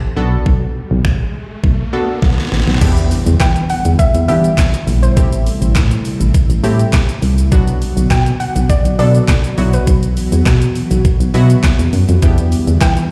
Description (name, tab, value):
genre	dance-pop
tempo	102 BPM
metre	4/4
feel	straight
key	E minor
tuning	A4 = 442 Hz
part	analog pluck	accompaniment	0.0-12.8 s	F#3 to A4	-24 LUFS	equal	chorus, sidechain pumping
part	solid FM bass	bass	0.0-13.0 s	A1 to E3	-16 LUFS	equal	sidechain pumping
part	riser and impact	sound effects	0.5-5.2 s	none	-28 LUFS	equal	none
part	pop drum kit	drums	0.5-13.1 s	crash cymbal, finger snaps, handclaps, hi-hat, kick drum, shaker, snare drum	-17 LUFS	equal	overdrive
part	airy breathy pad	sustained chords	3.2-13.1 s	C3 to F#4	-24 LUFS	equal	chorus, sidechain pumping
part	soft round pluck	melody	3.4-12.9 s	B4 to G5	-23 LUFS	equal	chorus, digital delay
part	group handclap	percussion	3.4-13.0 s	none	-36 LUFS	equal	none
room	light reverb, digital ambience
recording	played on a big sound system in a bare room, stone room reverb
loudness	-14 LUFS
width	mono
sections	0.0-2.8 A section; 2.8-13.1 B section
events	riser 0.5-2.8; drum fill 2.2-2.8; impact 2.8-5.2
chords	0.2 Bm7; 2.8 Em7; 5.2 Am7; 7.5 Bm; 9.6 Bsus4; 12.2 Em7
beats	| 0.46 1.05 1.64 2.23 | 2.81 3.40 3.99 4.58 | 5.17 5.75 6.34 6.93 | 7.52 8.11 8.70 9.28 | 9.87 10.46 11.05 11.64 | 12.22 12.81